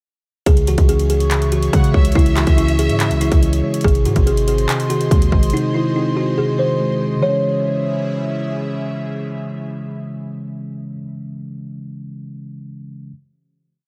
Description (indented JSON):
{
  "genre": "hip hop, trap",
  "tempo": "142 BPM",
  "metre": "4/4",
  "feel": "half-time",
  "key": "C# harmonic minor",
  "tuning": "A4 = 440 Hz",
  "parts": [
    { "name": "buzzing kalimba", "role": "melody", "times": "0.5-8.5 s", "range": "D#4 to C#5", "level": "-23 LUFS", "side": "equal", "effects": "low-pass filter" },
    { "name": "mellow tine electric piano", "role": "accompaniment", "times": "0.5-13.1 s", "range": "B#2 to C#5", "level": "-24 LUFS", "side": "equal", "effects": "low-pass filter" },
    { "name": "airy breathy pad", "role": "sustained chords", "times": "0.7-11.0 s", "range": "C#4 to C#6", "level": "-32 LUFS", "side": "equal", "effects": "chorus" },
    { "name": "hard-hitting 808-style bass", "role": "bass", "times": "0.5-5.5 s", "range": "G#1 to C#3", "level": "-20 LUFS", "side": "equal", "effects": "none" },
    { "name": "trap drum kit", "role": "drums", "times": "0.5-5.6 s", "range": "handclaps, hi-hat, kick drum", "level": "-19 LUFS", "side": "equal", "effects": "none" },
    { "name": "warm studio violin section", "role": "second line", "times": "1.7-3.8 s", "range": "E5 to F#5", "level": "-30 LUFS", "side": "equal", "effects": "delay" }
  ],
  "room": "little or no reverb",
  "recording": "none",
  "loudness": "-17 LUFS",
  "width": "mono",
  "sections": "0.5-7.2 hook; 7.2-10.6 final chord",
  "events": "none",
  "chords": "0.5 C#m; 3.8 G#; 7.2 C#m",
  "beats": "| 0.46 0.89 1.31 1.73 | 2.15 2.58 3.00 3.42 | 3.84 4.27 4.69 5.11 | 5.53 5.96 6.38 6.80 | 7.22 7.65 8.07 8.49 | 8.91 9.34 9.76 10.18"
}